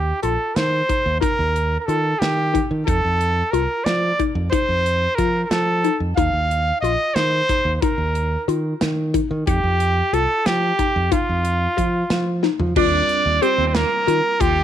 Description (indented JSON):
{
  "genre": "progressive instrumental, band music in an uneven meter",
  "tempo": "182 BPM (eighths)",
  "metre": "5/8",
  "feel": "straight",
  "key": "Eb lydian",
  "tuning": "A4 = 440 Hz",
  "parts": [
    { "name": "bright trumpet", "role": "melody", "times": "0.0-14.6 s", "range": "F4 to F5", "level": "-20 LUFS", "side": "right 1 dB", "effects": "none" },
    { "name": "hollow square pluck", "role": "arpeggios", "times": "0.0-14.6 s", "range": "Eb4 to G4", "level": "-24 LUFS", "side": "left 14 dB", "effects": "chorus" },
    { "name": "fingered electric bass", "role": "bass", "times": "0.0-14.6 s", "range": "Bb1 to F3", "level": "-22 LUFS", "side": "right 1 dB", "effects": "none" },
    { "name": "modern studio drum kit", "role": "drums", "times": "0.2-14.6 s", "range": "crash cymbal, hi-hat, kick drum, snare drum, toms", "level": "-25 LUFS", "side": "right 1 dB", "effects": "none" },
    { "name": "semi-hollow electric guitar", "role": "second line", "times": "12.8-14.6 s", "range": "G3 to D4", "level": "-25 LUFS", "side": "right 14 dB", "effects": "tremolo" },
    { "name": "bell-like tine electric piano", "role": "accompaniment", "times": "12.8-14.6 s", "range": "G3 to Bb4", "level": "-30 LUFS", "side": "right 15 dB", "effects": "phaser" }
  ],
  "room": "light reverb, studio ambience",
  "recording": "1960s-style stereo with parts hard left and right",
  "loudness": "-17 LUFS",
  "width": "side -10 dB against mid",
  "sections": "0.0-12.8 A section; 12.8-14.6 B section",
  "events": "drum fill 12.4-12.8",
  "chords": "0.0 Eb; 2.9 F7; 6.2 Eb5; 9.5 F5; 12.8 Gm7/Eb"
}